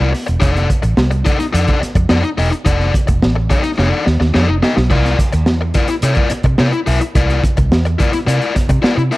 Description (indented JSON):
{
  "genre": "funk",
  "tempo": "107 BPM",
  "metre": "4/4",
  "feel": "straight",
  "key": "C mixolydian",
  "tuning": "A4 = 441 Hz",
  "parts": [
    { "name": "biting overdriven guitar", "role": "accompaniment", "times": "0.0-9.2 s", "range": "Eb4 to E5", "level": "-18 LUFS", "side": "left 4 dB", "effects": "none" },
    { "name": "vintage muted fingered electric bass", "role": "bass", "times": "0.0-9.1 s", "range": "E1 to C3", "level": "-15 LUFS", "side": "equal", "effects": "none" },
    { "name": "crunchy breakbeat drum kit", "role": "drums", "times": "0.1-9.2 s", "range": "crash cymbal, hi-hat, kick drum, snare drum", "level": "-16 LUFS", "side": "equal", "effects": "none" }
  ],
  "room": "small room ambience",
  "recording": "none",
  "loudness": "-12 LUFS",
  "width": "side -19 dB against mid",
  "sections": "0.0-9.2 A section",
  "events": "drum fill 3.8-4.9",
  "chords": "0.4 F6; 4.9 C9",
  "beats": "| 0.42 0.98 1.54 2.10 | 2.66 3.22 3.78 4.34 | 4.90 5.46 6.02 6.58 | 7.15 7.71 8.27 8.83"
}